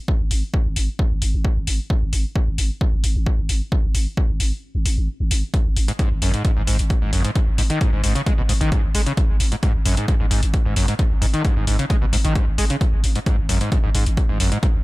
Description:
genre	driving peak-time techno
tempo	132 BPM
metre	4/4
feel	straight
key	unclear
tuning	A4 = 440 Hz
part	electronic kick drum	drums	0.1-14.7 s	none	-20 LUFS	equal	none
part	growling 808-style bass	bass	0.2-14.8 s	G#1	-21 LUFS	equal	tube saturation, sidechain pumping, low-pass filter
part	electronic hi-hat	drums	0.3-14.7 s	none	-27 LUFS	left 2 dB	sidechain pumping on hats
part	screaming distorted acid line	riff	5.9-14.7 s	F#2 to G#3	-24 LUFS	equal	distortion, analog chorus, sidechain pumping, dub echo
room	digital ambience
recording	none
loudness	-18 LUFS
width	side -20 dB against mid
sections	0.0-14.8 A section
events	kick drops out 4.6-5.5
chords	0.0 G#5

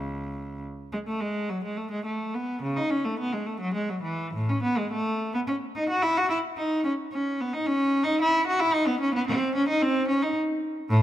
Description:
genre	classical, baroque-style suite movement for unaccompanied cello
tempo	95-114 BPM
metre	3/4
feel	rubato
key	unclear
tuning	A4 = 441 Hz
part	rich cello	solo	0.0-11.0 s	C#2 to F#4	-24 LUFS	equal	none
room	moderate concert hall reverb, RT60 2.2 s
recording	close, detailed microphones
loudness	-24 LUFS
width	side -12 dB against mid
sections	0.9-11.0 A section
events	none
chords	none

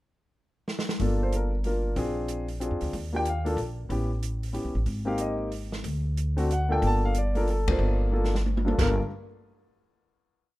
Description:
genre	jazz piano trio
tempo	185 BPM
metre	3/4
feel	swing 62% on 8ths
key	G minor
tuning	A4 = 441 Hz
part	open jazz drum kit	drums	0.7-8.9 s	crash cymbal, hi-hat, kick drum, ride cymbal, snare drum, toms	-32 LUFS	equal	none
part	warm concert grand piano	melody	1.0-9.1 s	G2 to A5	-29 LUFS	left 1 dB	none
part	upright bass	bass	1.0-9.0 s	G1 to F2	-27 LUFS	equal	none
room	light reverb, small room ambience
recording	rough home demo mix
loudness	-25 LUFS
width	side -17 dB against mid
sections	0.0-1.0 pickup bar; 1.0-8.8 A section; 8.8-9.8 final chord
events	drum fill 0.7-1.0, 8.1-8.8; band accent 7.6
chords	0.0 N.C.; 1.0 Gm9; 2.0 Bb7; 2.9 Ebmaj9; 3.9 A9; 4.9 Abmaj9; 5.8 D; 6.8 Gm9; 8.8 Gm

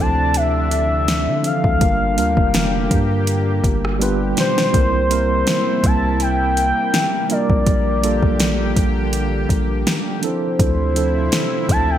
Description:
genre	contemporary R&B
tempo	82 BPM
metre	4/4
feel	swing 54% on 16ths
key	D minor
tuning	A4 = 440 Hz
part	gliding portamento lead	melody	0.0-12.0 s	C5 to A5	-21 LUFS	left 1 dB	chorus, digital delay
part	mellow tine electric piano	accompaniment	0.0-12.0 s	B2 to D5	-22 LUFS	right 3 dB	fast stereo tremolo
part	lush unison pad	sustained chords	0.0-12.0 s	C3 to G4	-26 LUFS	left 2 dB	chorus
part	long sustained 808-style bass	bass	0.0-12.0 s	F1 to D3	-21 LUFS	equal	none
part	smooth R&B drum kit	drums	0.3-11.9 s	hi-hat, kick drum, rim click, snare drum	-20 LUFS	equal	gated reverb
room	moderate plate reverb, RT60 1.9 s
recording	bright 1980s-style digital production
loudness	-15 LUFS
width	side -10 dB against mid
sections	0.0-12.0 A section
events	drum fill 4.0-4.7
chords	0.0 Dm9; 1.8 Gm7; 4.0 G7; 4.7 C7; 7.3 Bb6; 10.2 Dm9

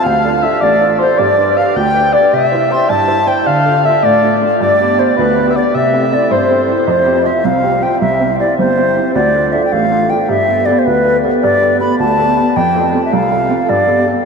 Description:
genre	celtic folk, Celtic jig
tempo	106 BPM (dotted quarters)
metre	6/8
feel	straight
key	C major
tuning	A4 = 440 Hz
part	baroque flute	melody	0.0-14.1 s	B4 to C6	-13 LUFS	left 1 dB	ping-pong delay
part	breathy flute-like synth lead	second line	0.0-6.9 s	B4 to A5	-17 LUFS	left 2 dB	chorus, ping-pong delay
part	warm upright piano	accompaniment	0.1-14.3 s	G1 to C5	-15 LUFS	right 2 dB	ensemble chorus
room	wet huge ambient reverb, RT60 7.2 s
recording	dreamy mix soaked in reverb, cassette tape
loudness	-10 LUFS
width	side -5 dB against mid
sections	0.0-6.9 A section; 6.9-14.3 B section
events	none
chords	0.0 Dm; 1.2 G; 2.3 C; 3.5 Dm; 4.6 G; 5.7 C6; 6.9 Fsus2; 8.0 C; 9.1 Dm; 10.3 Gadd9; 12.6 F; 13.7 Gadd9

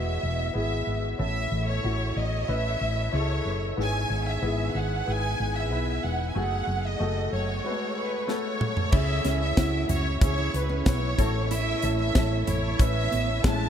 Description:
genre	piano-driven pop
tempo	93 BPM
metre	4/4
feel	straight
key	unclear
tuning	A4 = 440 Hz
part	rich studio violin section	melody	0.0-13.7 s	B4 to A5	-30 LUFS	right 1 dB	analog delay
part	clear grand piano	accompaniment	0.0-13.7 s	G#2 to B4	-31 LUFS	left 2 dB	wide subtle chorus
part	woody fretless electric bass	bass	0.0-13.7 s	E1 to C#2	-28 LUFS	equal	lush chorus
part	modern studio drum kit	drums	8.3-13.6 s	crash cymbal, hi-hat, kick drum, snare drum, toms	-26 LUFS	equal	none
part	fingerpicked steel-string acoustic guitar	riff	9.2-13.7 s	B3 to F#4	-34 LUFS	right 6 dB	analog chorus
room	moderate huge ambient reverb, RT60 8.4 s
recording	dreamy mix soaked in reverb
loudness	-24 LUFS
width	side -9 dB against mid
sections	0.0-8.9 A section; 8.9-13.7 B section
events	drum fill 8.3-8.9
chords	0.0 E; 1.2 A; 3.8 E/G#; 6.4 F#madd9; 8.9 C#m; 11.2 A

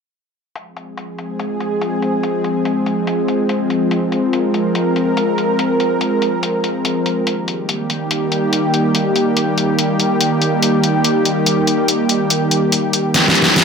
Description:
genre	heavy wobble dubstep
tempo	143 BPM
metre	4/4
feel	half-time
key	F minor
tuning	A4 = 440 Hz
part	lush unison pad	sustained chords	0.9-13.6 s	Eb3 to Bb4	-16 LUFS	equal	chorus
part	dubstep drum kit	drums	0.6-13.6 s	hi-hat, snare drum	-19 LUFS	left 1 dB	low-pass filter on hats, low-pass filter on snare, low-pass filter on room
room	moderate digital room reverb, RT60 1.1 s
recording	none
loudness	-14 LUFS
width	side -6 dB against mid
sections	0.6-13.6 A section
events	filter sweep on drum 0.6-13.6; drum fill 13.1-13.6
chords	0.6 Fm; 7.3 Eb

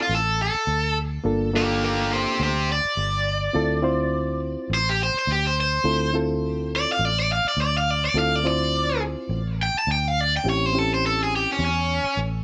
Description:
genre	straight-eighth soul blues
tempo	104 BPM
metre	4/4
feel	swing 56% on 16ths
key	D minor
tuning	A4 = 442 Hz
part	cranked stack guitar	melody	0.0-12.2 s	Bb3 to A5	-25 LUFS	equal	overdrive
part	reed electric piano	accompaniment	0.0-11.7 s	Bb3 to C5	-28 LUFS	equal	none
part	vintage muted fingered electric bass	bass	0.1-12.4 s	G1 to E2	-29 LUFS	equal	none
room	light reverb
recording	none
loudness	-23 LUFS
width	mono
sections	0.0-12.4 A section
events	overdriven electric guitar solo 0.0-12.4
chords	0.0 Dm7; 1.3 Gm7; 3.6 Dm7; 10.5 A7#9

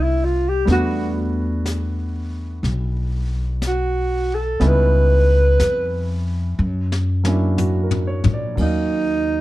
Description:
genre	jazz ballad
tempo	61 BPM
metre	4/4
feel	swing 68% on 8ths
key	unclear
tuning	A4 = 440 Hz
part	mellow alto saxophone	melody	0.0-9.4 s	Eb4 to B4	-20 LUFS	right 1 dB	none
part	warm grand piano	accompaniment	0.0-9.4 s	F#3 to F5	-25 LUFS	right 2 dB	none
part	upright bass	bass	0.0-9.4 s	B1 to A#2	-20 LUFS	equal	none
part	jazz brush drum kit	drums	0.7-9.4 s	brushed snare drum, hi-hat, kick drum, ride cymbal, snare drum, toms	-26 LUFS	left 3 dB	none
room	little or no reverb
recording	dark, warm production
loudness	-17 LUFS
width	side -16 dB against mid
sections	0.0-8.6 A section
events	alto saxophone solo 0.0-8.6; drum fill 6.6-8.6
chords	0.0 F9; 0.7 Em11; 4.6 C#m7b5; 6.6 F#7b13; 8.6 Ebm9

